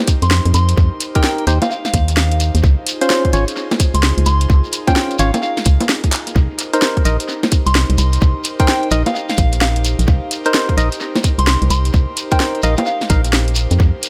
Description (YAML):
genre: UK garage, two-step garage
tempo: 129 BPM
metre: 4/4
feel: swing 63% on 16ths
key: C phrygian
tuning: A4 = 440 Hz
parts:
  - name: airy breathy pad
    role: sustained chords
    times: 0.0-14.1 s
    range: Eb4 to C5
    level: -30 LUFS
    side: equal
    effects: chorus, vintage 12-bit sampler grit, sidechain pumping
  - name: electronic kick drum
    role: drums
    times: 0.1-13.9 s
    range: none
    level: -16 LUFS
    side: equal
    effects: overdrive, studio reverb
  - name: garage drum kit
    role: drums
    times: 0.1-14.1 s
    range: bongos, handclaps, hi-hat, snare drum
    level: -21 LUFS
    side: equal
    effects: overdrive, studio reverb, analog delay
  - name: shekere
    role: percussion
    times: 0.1-14.1 s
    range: none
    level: -29 LUFS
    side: equal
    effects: analog delay
  - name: soft synth bell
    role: melody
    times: 0.2-13.3 s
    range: F5 to C6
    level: -26 LUFS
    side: equal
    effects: chorus, phaser, analog delay
  - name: organ-like FM bass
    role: bass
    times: 0.2-13.9 s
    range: Ab1 to F2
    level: -17 LUFS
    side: equal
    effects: none
  - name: percussive organ stab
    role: stabs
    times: 1.2-13.2 s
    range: Db4 to F5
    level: -22 LUFS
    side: equal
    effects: chorus, analog delay
room: light reverb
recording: echo-heavy mix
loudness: -15 LUFS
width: mono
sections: 0.0-14.1 A section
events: drum fill 6.1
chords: 0.0 F9sus4; 2.6 Dbmaj7; 6.4 Cm7